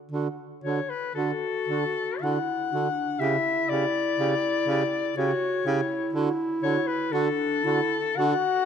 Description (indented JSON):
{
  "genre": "classical, lyrical piece for single-reed quartet",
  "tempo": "55-62 BPM",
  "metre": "3/4",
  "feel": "rubato",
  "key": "D major",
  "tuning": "A4 = 439 Hz",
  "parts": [
    { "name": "clear alto saxophone", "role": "second line", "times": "0.1-8.3 s", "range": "F#4 to G4", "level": "-33 LUFS", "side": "right 10 dB", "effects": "none" },
    { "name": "clear baritone saxophone", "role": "bass", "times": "0.1-8.3 s", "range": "C#3 to D3", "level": "-31 LUFS", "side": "right 2 dB", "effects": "none" },
    { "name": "warm soprano saxophone", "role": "melody", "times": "0.6-8.7 s", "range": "A4 to F#5", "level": "-27 LUFS", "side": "left 7 dB", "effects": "none" },
    { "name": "warm clarinet", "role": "accompaniment", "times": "1.2-8.7 s", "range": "D4 to F#4", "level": "-29 LUFS", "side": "right 1 dB", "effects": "none" }
  ],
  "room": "light reverb",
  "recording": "none",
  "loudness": "-24 LUFS",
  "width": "side -7 dB against mid",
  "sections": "0.1-8.7 A section",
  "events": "none",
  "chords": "0.1 D; 3.2 Em13/C#; 6.1 D"
}